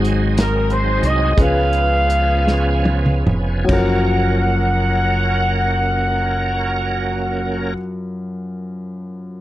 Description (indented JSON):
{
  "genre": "slow gospel",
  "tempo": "46-62 BPM (dotted quarters)",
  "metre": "6/8",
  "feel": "straight",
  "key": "F# major",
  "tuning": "A4 = 439 Hz",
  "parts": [
    { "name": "warm grand piano", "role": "accompaniment", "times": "0.0-9.4 s", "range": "F#2 to B#4", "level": "-23 LUFS", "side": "left 2 dB", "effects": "none" },
    { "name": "bright tonewheel organ", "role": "sustained chords", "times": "0.0-7.7 s", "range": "E#3 to A#4", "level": "-24 LUFS", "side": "right 4 dB", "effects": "chorus vibrato, slow rotary speaker" },
    { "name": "fingered electric bass", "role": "bass", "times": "0.0-7.7 s", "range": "E#1 to C#2", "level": "-20 LUFS", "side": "equal", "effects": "none" },
    { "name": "warm soul drum kit", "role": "drums", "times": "0.0-3.9 s", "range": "crash cymbal, hi-hat, kick drum, snare drum, toms", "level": "-19 LUFS", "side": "equal", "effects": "none" },
    { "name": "mellow horn section", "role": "melody", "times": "0.4-7.8 s", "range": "G#4 to F#5", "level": "-20 LUFS", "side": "equal", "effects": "slapback echo" }
  ],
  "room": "little or no reverb",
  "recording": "dry, close 1970s-style studio recording",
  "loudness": "-15 LUFS",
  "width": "side -15 dB against mid",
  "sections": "0.0-3.7 A section; 3.7-8.9 B section",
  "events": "slowing down 0.0-3.7; drum fill 2.5-3.7",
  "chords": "0.0 G#7; 1.4 C#7; 3.7 F#maj7"
}